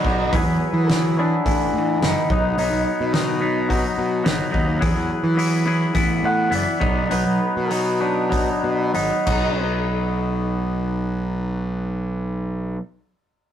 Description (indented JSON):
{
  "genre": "indie rock",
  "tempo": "90-107 BPM",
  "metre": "4/4",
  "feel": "straight",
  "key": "B major",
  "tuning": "A4 = 440 Hz",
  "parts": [
    { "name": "electric guitar through a small old amp", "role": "melody", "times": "0.0-9.6 s", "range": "D4 to F#5", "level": "-25 LUFS", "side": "equal", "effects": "none" },
    { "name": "twangy electric guitar", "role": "riff", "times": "0.0-12.8 s", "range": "E3 to G#4", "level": "-23 LUFS", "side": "left 2 dB", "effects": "phaser" },
    { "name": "loose indie drum kit", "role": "drums", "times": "0.0-9.4 s", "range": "crash cymbal, hi-hat, kick drum, snare drum", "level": "-25 LUFS", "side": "equal", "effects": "none" },
    { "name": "fuzz picked electric bass", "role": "bass", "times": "0.1-12.8 s", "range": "F#1 to E3", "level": "-23 LUFS", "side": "right 1 dB", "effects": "overdrive" }
  ],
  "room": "moderate studio reverb, RT60 0.6 s",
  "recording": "rough rehearsal-room recording",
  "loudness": "-18 LUFS",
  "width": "side -10 dB against mid",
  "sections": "0.0-9.6 A section; 9.6-12.3 B section",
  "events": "clean electric guitar solo 0.0-9.6; slowing down 4.8-9.6",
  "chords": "0.3 Eadd9; 1.4 Asus2; 2.3 B; 4.8 Eadd9; 5.9 Asus2; 6.8 B",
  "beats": "| 0.33 0.89 1.45 2.01 | 2.57 3.13 3.69 4.25 | 4.82 5.38 5.95 6.53 | 7.11 7.71 8.32 8.96 | 9.61 10.27 10.93 11.59"
}